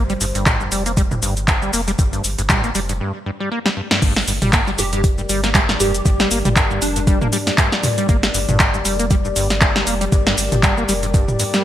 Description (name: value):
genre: acid house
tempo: 118 BPM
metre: 4/4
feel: swing 56% on 16ths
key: G minor pentatonic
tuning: A4 = 440 Hz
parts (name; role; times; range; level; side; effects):
- dark analog pad; sustained chords; 0.0-11.6 s; G3 to D5; -27 LUFS; left 3 dB; chorus, sidechain pumping
- acid bass, saw; riff; 0.0-11.6 s; G2 to Bb3; -23 LUFS; equal; tube saturation, analog chorus, digital delay
- warm sub bass; bass; 0.0-11.4 s; F1 to G1; -25 LUFS; equal; tube saturation, sidechain pumping
- electro analog drum machine; drums; 0.1-11.6 s; crash cymbal, handclaps, hi-hat, shaker, snare drum, toms; -18 LUFS; equal; gated reverb
- electronic kick drum; drums; 0.5-11.3 s; none; -17 LUFS; equal; overdrive
- plucky unison lead; melody; 4.8-7.5 s; D4 to G4; -24 LUFS; right 1 dB; ensemble chorus, digital delay
room: light reverb, digital ambience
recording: bright 1980s-style digital production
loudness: -15 LUFS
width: side -12 dB against mid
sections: 0.0-4.0 A section; 4.0-11.6 B section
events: filter sweep on acid bass 0.0-4.0; drum fill 3.6-4.0; drop 4.0-11.6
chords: 0.0 Gm